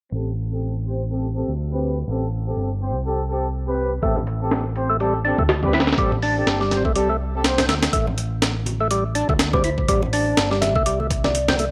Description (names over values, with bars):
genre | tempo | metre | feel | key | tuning
breakbeat, breaks | 123 BPM | 4/4 | swing 57% on 16ths | A minor | A4 = 440 Hz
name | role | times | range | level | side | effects
warm brass ensemble | stabs | 0.1-7.6 s | C4 to C5 | -28 LUFS | equal | vintage 12-bit sampler grit, low-pass filter, analog delay
picked electric bass | bass | 0.1-11.7 s | G1 to D2 | -27 LUFS | equal | low-pass filter
percussive tonewheel organ | riff | 4.0-11.7 s | G3 to E4 | -25 LUFS | equal | overdrive, slow rotary speaker, tube saturation, vintage 12-bit sampler grit, analog delay
breakbeat sampler-style drum kit | drums | 4.0-11.7 s | hi-hat, kick drum, snare drum | -24 LUFS | equal | small room reverb
congas | percussion | 4.2-11.6 s | none | -34 LUFS | equal | none
thumb-piano-like synth pluck | melody | 9.5-11.6 s | C5 to E5 | -27 LUFS | equal | chorus, AM radio sound
room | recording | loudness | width
light reverb | dry, gritty hardware recording, transformer saturation, low-pass filter | -21 LUFS | mono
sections
0.1-7.9 A section; 7.9-11.7 B section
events
filter sweep on picked electric bass 0.1-7.9; filter sweep 0.1-7.9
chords
0.1 Am7